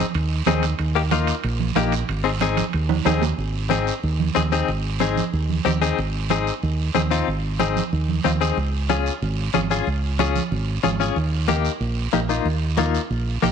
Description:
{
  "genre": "latin, cumbia",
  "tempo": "185 BPM",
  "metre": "4/4",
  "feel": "straight",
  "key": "Ab major",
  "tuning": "A4 = 440 Hz",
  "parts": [
    { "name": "direct-recorded clean electric guitar", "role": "accompaniment", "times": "0.0-13.5 s", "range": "Bb3 to Ab4", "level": "-23 LUFS", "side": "left 9 dB", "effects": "tremolo" },
    { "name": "fingered electric bass", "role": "bass", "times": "0.1-13.5 s", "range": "Ab1 to Eb2", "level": "-23 LUFS", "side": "right 1 dB", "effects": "none" },
    { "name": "congas", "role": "percussion", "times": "0.1-13.5 s", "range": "none", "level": "-27 LUFS", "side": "right 13 dB", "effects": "none" },
    { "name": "guiro", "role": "percussion", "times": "0.1-13.5 s", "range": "none", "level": "-33 LUFS", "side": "right 14 dB", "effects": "none" },
    { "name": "timbales", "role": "percussion", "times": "0.1-3.3 s", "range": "none", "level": "-30 LUFS", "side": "right 13 dB", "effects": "none" }
  ],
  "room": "light reverb, studio ambience",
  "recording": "1960s-style stereo with parts hard left and right",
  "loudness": "-19 LUFS",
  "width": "side -7 dB against mid",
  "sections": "0.0-3.4 A section; 3.4-13.5 B section",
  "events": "drum fill 2.9-3.4",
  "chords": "0.0 Ab; 0.8 Eb; 2.1 Ab; 8.6 Db; 11.2 Eb"
}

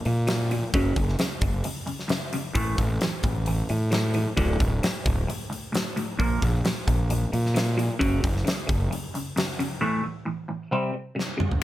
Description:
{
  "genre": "quiet-loud alternative rock",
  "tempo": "132 BPM",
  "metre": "4/4",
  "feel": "straight",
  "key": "unclear",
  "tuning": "A4 = 440 Hz",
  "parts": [
    { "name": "clean electric guitar", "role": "arpeggios", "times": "0.0-11.6 s", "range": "D2 to C4", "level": "-29 LUFS", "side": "equal", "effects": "phaser" },
    { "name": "fuzz fingered electric bass", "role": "bass", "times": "0.1-8.9 s", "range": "D1 to Bb2", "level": "-25 LUFS", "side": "equal", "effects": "overdrive" },
    { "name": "big rock drum kit", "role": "drums", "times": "0.1-11.6 s", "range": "hi-hat, kick drum, snare drum, toms", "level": "-27 LUFS", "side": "equal", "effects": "none" }
  ],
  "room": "light reverb",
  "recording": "none",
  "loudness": "-23 LUFS",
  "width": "side -14 dB against mid",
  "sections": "0.0-11.6 A section",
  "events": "drum fill 11.2-11.6",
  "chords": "0.0 Bb5; 0.7 F#5; 2.6 A5; 4.4 D5; 6.2 Bb5; 8.0 F#5; 9.8 A5; 10.7 C5"
}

